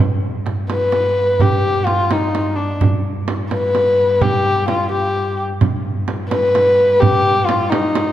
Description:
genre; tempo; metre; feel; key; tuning
Persian modal ensemble; 85 BPM (dotted quarters); 6/8; straight; G dastgah homayun; A4 = 440 Hz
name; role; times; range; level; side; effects
rich cello; drone; 0.0-8.1 s; G2; -24 LUFS; equal; none
tombak; percussion; 0.2-8.1 s; none; -21 LUFS; right 2 dB; none
frame drum; percussion; 0.5-8.1 s; none; -22 LUFS; right 4 dB; none
dark kamancheh; melody; 0.7-8.1 s; D4 to B4; -16 LUFS; left 2 dB; none
room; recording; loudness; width
wet concert hall reverb, RT60 1.8 s; dark, warm production; -14 LUFS; side -12 dB against mid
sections
0.0-5.6 A section; 5.6-8.1 A section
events
stop 4.9-5.6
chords
none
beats
| 0.00 0.70 | 1.40 2.10 | 2.81 3.51 | 4.21 4.92 | 5.62 6.32 | 7.02 7.73

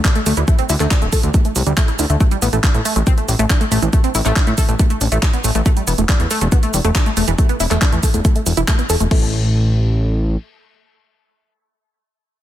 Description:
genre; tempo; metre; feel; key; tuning
uplifting trance; 139 BPM; 4/4; straight; unclear; A4 = 440 Hz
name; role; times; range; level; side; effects
tight sequenced synth; arpeggios; 0.0-9.3 s; A2 to A4; -21 LUFS; equal; chorus, sidechain pumping, dub echo
electronic kick drum; drums; 0.0-9.2 s; none; -15 LUFS; equal; none
house drum kit; drums; 0.0-9.2 s; crash cymbal, handclaps, hi-hat, shaker; -22 LUFS; right 2 dB; sidechain pumping on hats, sidechain pumping on perc, soft clipping on snare, sidechain pumping on cymbals
fat analog bass; bass; 0.3-10.4 s; D1 to A2; -17 LUFS; equal; sidechain pumping
room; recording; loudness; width
little or no reverb; dense, heavily limited modern master; -14 LUFS; side -12 dB against mid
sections
0.0-9.1 A section; 9.1-12.4 B section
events
drop 0.0-9.1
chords
0.0 D5; 2.2 N.C.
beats
0.05 | 0.48 0.91 1.34 1.77 | 2.21 2.64 3.07 3.50 | 3.93 4.36 4.79 5.23 | 5.66 6.09 6.52 6.95 | 7.38 7.82 8.25 8.68 | 9.11 9.54 9.97

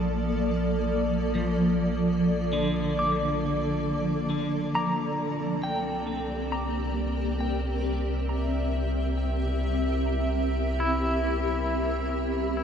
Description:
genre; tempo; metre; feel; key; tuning
ambient; free time; none; none; unclear; A4 = 440 Hz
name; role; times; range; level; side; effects
granular cloud pad; sustained chords; 0.0-12.6 s; F3 to E5; -27 LUFS; equal; built-in reverb, shimmer reverb
round analog bass; bass; 0.0-12.6 s; Bb1 to C2; -31 LUFS; equal; none
clean electric guitar; arpeggios; 1.4-12.6 s; D3 to D6; -30 LUFS; equal; tremolo, ping-pong delay, shimmer reverb
room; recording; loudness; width
wet huge ambient reverb, RT60 7.6 s; none; -25 LUFS; side -8 dB against mid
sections
0.0-12.6 A section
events
none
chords
0.0 Bbmaj7; 5.0 C7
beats
free time

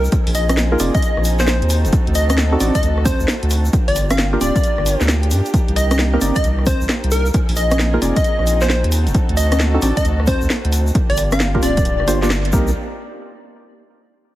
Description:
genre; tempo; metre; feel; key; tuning
UK garage, two-step garage; 133 BPM; 4/4; swing 65% on 16ths; unclear; A4 = 441 Hz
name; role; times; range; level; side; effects
plucky unison lead; melody; 0.0-12.3 s; Bb4 to F5; -23 LUFS; left 1 dB; ping-pong delay
dark studio violin section; sustained chords; 0.0-12.7 s; Bb3 to A4; -28 LUFS; right 1 dB; sidechain pumping
saturated sub bass; bass; 0.0-12.7 s; D1 to G2; -18 LUFS; equal; none
tube shaker; percussion; 0.0-12.7 s; none; -31 LUFS; left 2 dB; none
electronic kick drum; drums; 0.1-12.6 s; none; -18 LUFS; equal; none
garage drum kit; drums; 0.1-12.5 s; congas, hi-hat, rim click, snare drum; -22 LUFS; equal; none
percussive organ stab; stabs; 0.7-12.7 s; Bb3 to D5; -22 LUFS; right 1 dB; chorus, ping-pong delay
room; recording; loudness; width
light reverb; heavily compressed radio sound, multiband compression; -14 LUFS; side -15 dB against mid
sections
0.0-12.8 A section; 12.8-14.3 B section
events
drop 0.0-12.8; band accent 12.3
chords
0.1 Bb7sus4; 1.7 D7b9; 3.7 Gm7; 5.5 Cm7; 7.3 Bb7sus4; 8.9 D7b9; 10.9 Gm7; 12.5 Cm7; 12.8 N.C.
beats
| 0.12 0.57 1.02 1.48 | 1.93 2.38 2.83 3.28 | 3.73 4.18 4.63 5.08 | 5.54 5.99 6.44 6.89 | 7.34 7.79 8.24 8.69 | 9.14 9.60 10.05 10.50 | 10.95 11.40 11.85 12.30

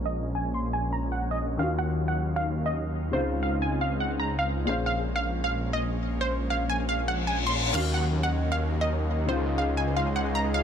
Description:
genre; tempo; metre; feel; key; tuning
future bass; 156 BPM; 4/4; half-time; Bb minor; A4 = 440 Hz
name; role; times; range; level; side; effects
dark baby grand piano; accompaniment; 0.0-10.6 s; Bb2 to C5; -34 LUFS; left 3 dB; tape echo
airy breathy pad; sustained chords; 0.0-10.6 s; Db3 to F5; -35 LUFS; right 1 dB; chorus
wide detuned saw bass; bass; 0.0-10.6 s; Bb1 to Eb2; -29 LUFS; equal; chorus
wide unison pluck; melody; 0.1-10.6 s; C5 to C6; -30 LUFS; right 1 dB; ping-pong delay
reverse cymbal; sound effects; 7.1-7.7 s; none; -32 LUFS; left 4 dB; none
concert harp; arpeggios; 7.7-10.6 s; Ab4 to Db6; -36 LUFS; left 2 dB; low-pass filter, tape echo
electronic crash cymbal; drums; 7.7-7.8 s; none; -37 LUFS; left 7 dB; small room ambience
room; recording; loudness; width
little or no reverb; low-pass filter; -25 LUFS; side -8 dB against mid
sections
0.0-7.7 A section; 7.7-10.6 A section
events
filter sweep on analog synth pad 0.0-7.7; filter sweep 0.0-7.7; reverse cymbal 7.1-7.7; filter sweep on harp 7.7-10.6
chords
0.0 Bbm9; 1.6 Ebm9; 3.1 Dbmaj9; 4.7 Bbm9; 7.7 Ebm9; 9.3 Dbmaj9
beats
| 0.06 0.44 0.82 1.21 | 1.59 1.98 2.36 2.75 | 3.13 3.52 3.90 4.29 | 4.67 5.06 5.44 5.83 | 6.21 6.59 6.98 7.36 | 7.75 8.13 8.52 8.90 | 9.29 9.67 10.06 10.44

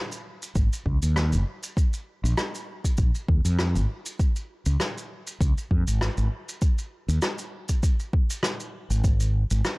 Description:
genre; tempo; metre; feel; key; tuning
sunset chillout; 99 BPM; 4/4; swing 55% on 16ths; unclear; A4 = 441 Hz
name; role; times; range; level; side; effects
shaker and rim click; drums; 0.1-9.8 s; none; -31 LUFS; equal; none
mellow fretless electric bass; bass; 0.6-9.6 s; Gb1 to F2; -23 LUFS; equal; transformer saturation
electronic kick drum; drums; 0.6-9.2 s; none; -22 LUFS; equal; none
room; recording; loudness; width
little or no reverb; dry, gritty hardware recording, transformer saturation, cassette tape; -23 LUFS; side -25 dB against mid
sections
0.0-9.8 A section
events
none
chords
none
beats
0.56 1.16 | 1.77 2.38 2.98 3.59 | 4.20 4.80 5.41 6.01 | 6.62 7.22 7.83 8.44 | 9.04 9.65

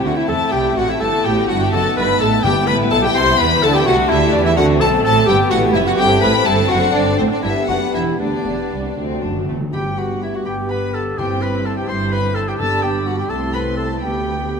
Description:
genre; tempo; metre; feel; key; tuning
quick classical-period movement for symphony orchestra; 84 BPM (dotted quarters); 6/8; rubato; E minor, G major from 3.9 s; A4 = 440 Hz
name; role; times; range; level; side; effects
warm chamber violin section; melody; 0.0-14.6 s; C5 to C6; -22 LUFS; left 5 dB; none
mellow hollow concert flute; second line; 0.0-14.6 s; C5 to C6; -24 LUFS; left 2 dB; none
warm chamber violin section; second line; 0.0-14.6 s; A3 to C6; -25 LUFS; left 4 dB; none
dark chamber viola section; accompaniment; 0.0-14.6 s; G3 to C5; -23 LUFS; right 1 dB; none
mellow French horn section; sustained chords; 0.0-14.6 s; A3 to A4; -23 LUFS; left 2 dB; none
clear chamber double bass section; bass; 0.0-14.6 s; E1 to E2; -24 LUFS; right 4 dB; none
dark chamber cello section; bass; 0.0-14.6 s; C2 to E3; -23 LUFS; right 4 dB; none
clear clarinet; second line; 0.1-14.6 s; C4 to C5; -23 LUFS; equal; none
timpani; percussion; 2.4-3.1, 9.0-13.3 s; G2 to D3; -28 LUFS; left 2 dB; none
room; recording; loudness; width
wet concert hall reverb, RT60 2.3 s; minimal, uncompressed stereo recording; -14 LUFS; side -6 dB against mid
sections
0.0-9.7 A section; 9.7-14.6 B section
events
timpani fill 9.0-9.7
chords
0.0 Am; 1.0 Em; 1.7 B7/F#; 2.4 Em/G; 3.9 A7(no3); 4.6 D5; 5.3 G; 6.0 Am7/G; 6.7 D/F#; 7.4 G; 9.0 D; 9.7 G; 11.2 C/G; 12.6 G; 13.3 Am/C; 14.0 G/D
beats
0.28 | 1.01 1.73 | 2.44 3.15 | 3.87 4.57 | 5.28 5.99 | 6.70 7.44 | 8.20 8.97 | 9.73 10.46 | 11.18 11.89 | 12.59 13.30 | 14.02

